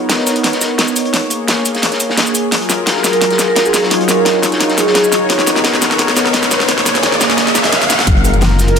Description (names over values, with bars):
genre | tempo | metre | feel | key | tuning
liquid drum and bass | 173 BPM | 4/4 | straight | F# major | A4 = 440 Hz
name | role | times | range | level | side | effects
warm analog pad | sustained chords | 0.0-8.8 s | F#3 to C#5 | -16 LUFS | left 1 dB | chorus, sidechain pumping
crunchy breakbeat drum kit | drums | 0.1-8.8 s | hi-hat, snare drum | -20 LUFS | left 1 dB | high-pass filter on hats, high-pass filter on snare, high-pass filter on room
pop drum kit | drums | 0.1-8.8 s | hi-hat, shaker, snare drum | -16 LUFS | equal | high-pass filter on hats, high-pass filter on snare, high-pass filter on perc
riser and impact | sound effects | 3.8-8.8 s | none | -18 LUFS | left 1 dB | none
vibraphone with medium mallets | melody | 3.1-4.9, 8.7-8.8 s | G#4 to A#4 | -17 LUFS | right 3 dB | tape echo
dark detuned saw bass | bass | 8.1-8.8 s | F#1 | -13 LUFS | left 1 dB | none
electronic kick drum | drums | 8.1 s | none | -14 LUFS | left 1 dB | none
bongos and congas | percussion | 8.2-8.7 s | none | -26 LUFS | left 6 dB | none
room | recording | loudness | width
moderate lush hall reverb, RT60 2.0 s | none | -11 LUFS | side -6 dB against mid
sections
0.0-8.1 A section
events
build-up 0.0-8.1; drum fill 0.0-8.1; riser 3.8-8.1; impact 8.1-8.8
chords
0.0 Bmaj9; 1.1 A#m7; 2.5 F#maj9; 3.7 D#m11; 5.3 Bmaj9; 6.7 A#m7; 8.1 F#maj9